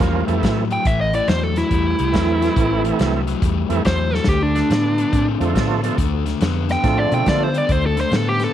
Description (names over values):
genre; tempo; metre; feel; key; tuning
electric blues shuffle; 140 BPM; 4/4; swing 65% on 8ths; A minor; A4 = 441 Hz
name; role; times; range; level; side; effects
bright tonewheel organ; accompaniment; 0.0-7.5 s; E3 to Bb4; -23 LUFS; right 9 dB; slow rotary speaker, overdrive
overdriven semi-hollow guitar; riff; 0.0-8.5 s; A2 to C4; -23 LUFS; left 8 dB; none
vintage muted fingered electric bass; bass; 0.0-8.5 s; A1 to D3; -22 LUFS; equal; none
natural country drum kit; drums; 0.0-8.5 s; hi-hat, kick drum, snare drum; -23 LUFS; equal; none
dark smooth lead guitar; melody; 0.7-8.5 s; D4 to G5; -21 LUFS; right 1 dB; overdrive
room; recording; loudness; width
light reverb; 1960s-style stereo with parts hard left and right, vinyl crackle; -16 LUFS; side -11 dB against mid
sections
0.0-8.5 A section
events
drum fill 4.1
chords
0.0 Am; 4.3 Dm